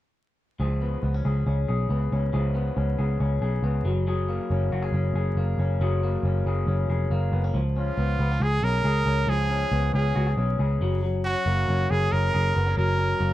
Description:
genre	jangly indie pop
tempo	138 BPM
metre	4/4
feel	straight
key	Db mixolydian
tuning	A4 = 440 Hz
part	electric guitar through a small old amp	arpeggios	0.6-13.3 s	F3 to Ab4	-29 LUFS	left 4 dB	tape echo
part	vintage muted picked electric bass	bass	0.6-13.3 s	F1 to Db2	-24 LUFS	equal	none
part	bright trumpet	melody	7.8-13.3 s	F4 to Bb4	-26 LUFS	right 2 dB	none
room	moderate studio reverb, RT60 0.6 s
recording	rough home demo mix, vinyl crackle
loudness	-22 LUFS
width	side -14 dB against mid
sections	0.6-7.5 A section; 7.5-13.3 B section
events	none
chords	0.6 Db7; 3.9 Gbadd9; 7.5 Db7; 10.8 Gbadd9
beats	| 0.59 1.03 1.46 1.90 | 2.33 2.77 3.20 3.64 | 4.07 4.51 4.94 5.38 | 5.81 6.25 6.68 7.12 | 7.55 7.99 8.42 8.85 | 9.29 9.72 10.16 10.59 | 11.03 11.46 11.90 12.33 | 12.77 13.20

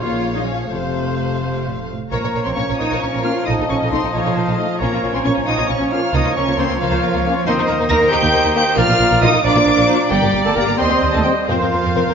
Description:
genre	quick classical-period movement for symphony orchestra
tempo	84-93 BPM (dotted quarters)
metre	6/8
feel	rubato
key	Bb minor, Bb major from 7.5 s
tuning	A4 = 440 Hz
part	rich chamber violin section	melody	0.0-12.1 s	A4 to Bb6	-23 LUFS	left 3 dB	none
part	bright oboe	second line	0.0-12.1 s	C5 to Eb5	-27 LUFS	right 1 dB	none
part	mellow hollow small flute group	second line	0.0-12.1 s	C5 to C6	-29 LUFS	equal	none
part	rich studio violin section	second line	0.0-12.1 s	Bb3 to F5	-25 LUFS	left 3 dB	none
part	mellow bassoon	accompaniment	0.0-12.1 s	Db3 to Bb3	-26 LUFS	equal	none
part	rich studio viola section	accompaniment	0.0-12.1 s	A3 to Eb5	-26 LUFS	left 1 dB	none
part	warm French horn section	sustained chords	0.0-12.0 s	C3 to Bb4	-26 LUFS	left 4 dB	none
part	rich chamber cello section	bass	0.0-12.1 s	F2 to Bb4	-22 LUFS	right 2 dB	none
part	rich chamber double bass section	bass	0.0-12.1 s	F1 to F2	-22 LUFS	right 3 dB	none
part	mellow trumpet	stabs	2.1-12.1 s	F4 to Bb5	-23 LUFS	right 1 dB	none
room	moderate concert hall reverb, RT60 1.9 s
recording	nothing above 7.5 kHz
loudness	-14 LUFS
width	side -6 dB against mid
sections	0.0-2.1 A section; 2.1-12.1 B section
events	none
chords	0.0 Bbm; 0.7 F; 2.1 Bbm; 3.5 F7/Bb; 4.8 Bbm; 6.1 Bbm/Db; 7.5 Eb; 8.8 Bb; 10.1 Gm; 10.8 Cm/Eb; 11.5 Fsus4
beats	0.01 | 0.71 1.42 | 2.12 2.79 | 3.47 4.14 | 4.81 5.48 | 6.15 6.81 | 7.46 8.11 | 8.77 9.44 | 10.11 10.79 | 11.48

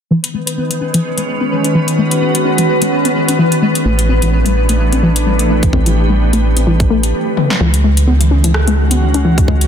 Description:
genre	IDM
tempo	128 BPM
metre	4/4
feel	swing 56% on 16ths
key	unclear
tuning	A4 = 445 Hz
part	glassy FM pad	sustained chords	0.3-9.7 s	Eb3 to Cb5	-17 LUFS	equal	ensemble chorus, built-in reverb
part	warbly dusty pluck	arpeggios	0.1-9.6 s	Fb3 to Db4	-17 LUFS	left 2 dB	chorus, digital delay
part	pulsing gated texture	texture	0.1-7.1 s	Cb4 to Cb5	-22 LUFS	left 2 dB	chorus, built-in reverb, sidechain pumping
part	electro analog drum machine	drums	0.2-9.7 s	hi-hat, rim click, snare drum, toms	-20 LUFS	left 2 dB	none
part	deep acid bass	bass	3.9-9.7 s	A1 to Db2	-13 LUFS	right 1 dB	tube saturation
part	electronic kick drum	drums	5.6-9.6 s	none	-14 LUFS	right 1 dB	none
room	light reverb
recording	dense, heavily limited modern master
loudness	-11 LUFS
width	side -8 dB against mid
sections	0.1-7.6 A section; 7.6-9.7 B section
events	filter sweep on synth arpeggio sound 0.1-7.6; stop 7.1-7.6; drum fill 7.4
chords	0.1 Db7(no3); 3.9 A7(no3); 7.6 Db5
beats	| 0.11 0.57 1.04 1.51 | 1.98 2.45 2.92 3.39 | 3.86 4.33 4.79 5.26 | 5.73 6.20 6.67 7.14 | 7.61 8.07 8.54 9.01 | 9.48

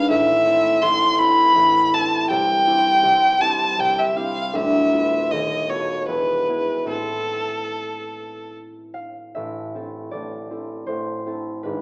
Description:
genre	classical, romantic duo for violin and harp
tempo	71-84 BPM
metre	3/4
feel	rubato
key	A minor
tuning	A4 = 439 Hz
part	rich violin	melody	0.0-8.5 s	A4 to C6	-17 LUFS	equal	none
part	concert harp	accompaniment	0.0-11.8 s	D1 to F5	-24 LUFS	equal	none
room	moderate recital hall reverb, RT60 1.2 s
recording	worn, warbling old tape, cassette tape, warbly pitch drift, small speaker sound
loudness	-16 LUFS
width	side -26 dB against mid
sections	0.0-9.4 A section; 9.4-11.8 B section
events	none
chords	0.1 Am; 2.3 C; 4.5 Bdim/D; 5.3 B7/D#; 6.1 E; 6.9 Am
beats	| 0.09 0.82 1.56 | 2.31 3.05 3.79 | 4.54 5.30 6.08 | 6.89 7.73 8.55 | 9.36 10.12 10.88 | 11.65

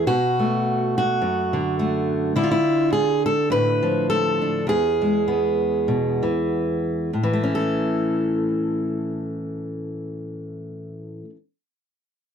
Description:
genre	folk, solo fingerstyle acoustic guitar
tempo	94-105 BPM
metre	4/4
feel	swing 56% on 8ths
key	A major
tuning	A4 = 441 Hz
part	fingerpicked steel-string acoustic guitar	solo	0.0-11.4 s	E2 to B4	-20 LUFS	equal	none
room	light reverb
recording	dry, close 1970s-style studio recording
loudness	-20 LUFS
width	side -8 dB against mid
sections	0.0-7.1 A section; 7.1-9.7 B section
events	slowing down 2.4-7.1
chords	0.1 Bm7; 2.4 Dm; 4.7 E; 7.1 A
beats	| 0.06 0.63 1.21 1.78 | 2.35 2.92 3.50 4.08 | 4.67 5.27 5.88 6.50 | 7.13 7.77 8.41 9.05

